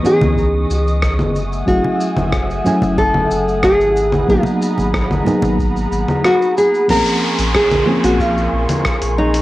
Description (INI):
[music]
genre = sunset chillout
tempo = 92 BPM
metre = 4/4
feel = straight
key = Bb phrygian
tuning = A4 = 436 Hz
[part]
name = mellow FM electric piano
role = accompaniment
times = 0.0-9.4 s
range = Fb3 to Ab5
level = -19 LUFS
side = equal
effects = chorus, tremolo, auto-pan, cassette tape, analog delay, plate reverb
[part]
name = airy breathy pad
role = sustained chords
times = 0.0-9.4 s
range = A3 to Db6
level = -24 LUFS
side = equal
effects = chorus, cassette tape, plate reverb
[part]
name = congas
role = percussion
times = 0.0-5.6 s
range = none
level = -22 LUFS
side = right 1 dB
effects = none
[part]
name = wind-like tuned noise texture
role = texture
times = 0.0-6.9 s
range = Eb6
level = -34 LUFS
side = right 2 dB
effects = built-in reverb, cassette tape
[part]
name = nylon-string guitar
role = melody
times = 0.1-9.4 s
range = Eb4 to Bb4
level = -17 LUFS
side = equal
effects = cassette tape, tape echo, plate reverb
[part]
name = dusty soul sampler-style drum kit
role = drums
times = 0.1-9.4 s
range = congas, crash cymbal, hi-hat, rim click, shaker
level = -22 LUFS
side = equal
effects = cassette tape
[part]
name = warm sub bass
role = bass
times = 0.2-9.4 s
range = Gb1 to Db2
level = -20 LUFS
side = equal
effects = none
[part]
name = electronic kick drum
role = drums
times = 0.4-9.0 s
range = none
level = -22 LUFS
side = equal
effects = cassette tape
[part]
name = downlifter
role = sound effects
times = 6.9-9.4 s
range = none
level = -24 LUFS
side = equal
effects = none
[sound]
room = moderate studio reverb, RT60 0.5 s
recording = home recording on cassette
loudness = -13 LUFS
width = side -16 dB against mid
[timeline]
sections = 0.0-6.9 A section; 6.9-9.4 B section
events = none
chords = 0.0 Dbm9; 1.4 Gbm9; 4.0 Abm9; 6.9 Bbm9